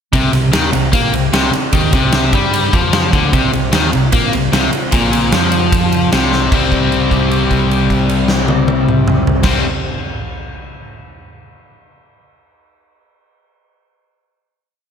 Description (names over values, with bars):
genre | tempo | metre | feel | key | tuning
hard rock | 151 BPM | 4/4 | straight | C minor | A4 = 440 Hz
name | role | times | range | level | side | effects
phased analog pad | sustained chords | 0.1-9.6 s | C4 to D5 | -26 LUFS | right 1 dB | phaser, chorus
cranked stack guitar | riff | 0.1-9.6 s | Bb2 to C4 | -16 LUFS | left 8 dB | overdrive, spring reverb
sludgy distorted guitar | riff | 0.1-9.6 s | Bb2 to C4 | -19 LUFS | right 9 dB | overdrive
fingered electric bass | bass | 0.1-9.6 s | Bb1 to Bb2 | -20 LUFS | equal | none
huge arena drum kit | drums | 0.1-9.5 s | crash cymbal, kick drum, ride cymbal, snare drum, toms | -16 LUFS | equal | none
room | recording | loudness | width
moderate lush hall reverb, RT60 1.9 s, small room ambience | big arena sound | -11 LUFS | side -7 dB against mid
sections
0.1-6.5 riff; 6.5-9.7 final chord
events
drum fill 6.3; held note 6.5-9.4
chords
0.1 Cm; 6.5 C5